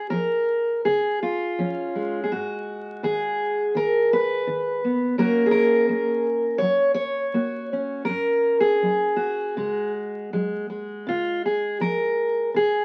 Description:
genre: folk, solo fingerstyle acoustic guitar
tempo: 82 BPM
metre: 4/4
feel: rubato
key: unclear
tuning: A4 = 441 Hz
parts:
  - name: fingerpicked steel-string acoustic guitar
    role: solo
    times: 0.0-12.8 s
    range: Gb2 to Db5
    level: -23 LUFS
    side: equal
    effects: none
room: light reverb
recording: very old 78 rpm record, vinyl crackle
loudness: -23 LUFS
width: mono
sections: 0.0-12.8 A section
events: none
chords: 0.0 Db; 2.3 Abm7; 5.2 Gbadd9; 11.1 Db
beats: 0.12 0.86 1.59 | 2.31 3.03 3.75 4.47 | 5.19 5.90 6.62 7.35 | 8.09 8.82 9.56 10.31 | 11.06 11.80 12.54

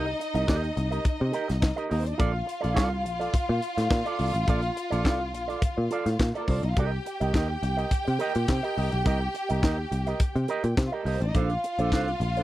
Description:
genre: disco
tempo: 105 BPM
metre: 4/4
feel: straight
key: C dorian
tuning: A4 = 441 Hz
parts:
  - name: rich studio violin section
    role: second line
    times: 0.0-12.4 s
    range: G3 to G5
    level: -31 LUFS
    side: left 1 dB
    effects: none
  - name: electric guitar with an envelope filter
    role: accompaniment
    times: 0.0-12.4 s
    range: D4 to Eb5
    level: -31 LUFS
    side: right 5 dB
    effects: none
  - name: picked electric bass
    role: bass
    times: 0.0-12.4 s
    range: A1 to C3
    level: -27 LUFS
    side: equal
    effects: none
  - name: tight funk drum kit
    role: drums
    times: 0.2-12.4 s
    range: handclaps, hi-hat, kick drum, snare drum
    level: -26 LUFS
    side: equal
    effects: none
room: little or no reverb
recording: dry, close 1970s-style studio recording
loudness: -24 LUFS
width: side -15 dB against mid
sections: 0.0-12.4 A section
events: none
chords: 0.0 Cm7; 2.2 Bbmaj7; 6.8 Cm7; 11.3 Bbmaj9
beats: 0.48 1.05 1.62 | 2.19 2.77 3.34 3.91 | 4.48 5.05 5.62 6.20 | 6.77 7.34 7.91 8.48 | 9.06 9.63 10.20 10.77 | 11.35 11.92

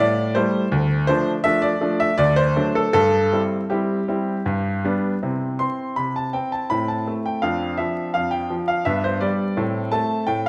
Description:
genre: classical-period piano sonatina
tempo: 78-85 BPM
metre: 3/4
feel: rubato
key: C major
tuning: A4 = 440 Hz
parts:
  - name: bright baby grand piano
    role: solo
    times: 0.0-10.5 s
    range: D2 to C6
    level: -21 LUFS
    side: equal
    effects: none
room: wet recital hall reverb, RT60 1.5 s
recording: vinyl crackle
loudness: -22 LUFS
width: mono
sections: 0.0-5.2 A section; 5.2-10.5 B section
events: none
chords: 0.0 Am7; 0.7 Dm; 2.2 D7; 2.9 C/G; 4.5 G; 5.2 C; 6.7 Am; 7.4 Dm7/F; 8.9 G; 9.6 Am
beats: | 0.72 1.45 2.19 | 2.95 3.71 4.47 | 5.24 5.98 6.71 | 7.43 8.14 8.86 | 9.57 10.28

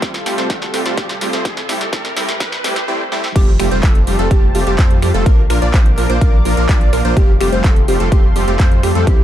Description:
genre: EDM, festival progressive house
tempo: 126 BPM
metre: 4/4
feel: straight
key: F major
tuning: A4 = 439 Hz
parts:
  - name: lush unison pad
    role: sustained chords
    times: 0.0-9.2 s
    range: C3 to E6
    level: -26 LUFS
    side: equal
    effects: chorus, sidechain pumping
  - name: supersaw stab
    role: riff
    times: 0.0-9.2 s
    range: E3 to D5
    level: -20 LUFS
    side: equal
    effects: sidechain pumping, dub echo
  - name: big-room dance drum kit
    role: drums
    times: 0.0-9.2 s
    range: crash cymbal, finger snaps, handclaps, hi-hat, snare drum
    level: -23 LUFS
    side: equal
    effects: high-pass filter on snare, high-pass filter on hats, high-pass filter on cymbals
  - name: electronic kick drum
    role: drums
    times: 0.0-9.2 s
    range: none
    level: -12 LUFS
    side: equal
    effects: none
  - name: riser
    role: sound effects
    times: 0.0-2.9 s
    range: none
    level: -26 LUFS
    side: equal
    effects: none
  - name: plucky unison lead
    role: arpeggios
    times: 3.4-9.2 s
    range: G4 to D5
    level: -21 LUFS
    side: right 2 dB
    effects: analog chorus, sidechain pumping, dub echo
  - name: wide detuned saw bass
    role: bass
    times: 3.4-9.2 s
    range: F1 to F2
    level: -18 LUFS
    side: equal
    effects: chorus, sidechain pumping
room: little or no reverb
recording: dark, warm production, high-pass filter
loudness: -12 LUFS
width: side -12 dB against mid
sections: 0.0-3.4 A section; 3.4-9.2 B section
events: build-up 0.0-3.4; drum fill 0.0-2.9, 3.1; riser 0.0-2.9; drop 3.4-9.2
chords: 0.0 Fadd9; 1.5 C; 3.4 Fadd9; 5.3 Bb; 7.2 Fadd9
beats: 0.02 0.50 0.98 | 1.45 1.93 2.40 2.88 | 3.36 3.83 4.31 4.79 | 5.26 5.74 6.21 6.69 | 7.17 7.64 8.12 8.60 | 9.07

